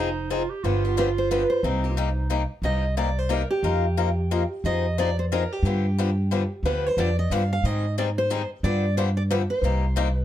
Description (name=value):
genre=acoustic string swing (jazz manouche)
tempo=180 BPM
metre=3/4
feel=swing 60% on 8ths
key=C minor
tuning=A4 = 439 Hz
part: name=picked steel-string acoustic guitar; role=melody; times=0.0-10.2 s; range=G4 to F5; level=-28 LUFS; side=right 1 dB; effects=none
part: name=warm clarinet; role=second line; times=0.0-2.5 s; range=C4 to G4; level=-28 LUFS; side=right 8 dB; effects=none
part: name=picked swing-style acoustic guitar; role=accompaniment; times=0.0-10.1 s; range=C3 to Bb4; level=-28 LUFS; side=left 6 dB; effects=none
part: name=upright bass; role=bass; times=0.0-10.2 s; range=F1 to Ab2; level=-24 LUFS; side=equal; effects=none
room=light reverb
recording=dark, warm production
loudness=-22 LUFS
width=side -12 dB against mid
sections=0.0-2.6 A section; 2.6-10.2 B section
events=none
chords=0.0 Fm7; 0.6 G7; 1.6 Cm7; 3.6 F7sus4; 4.6 Fm7; 5.6 G7; 7.6 Abmaj7; 8.6 G7; 9.6 Cm7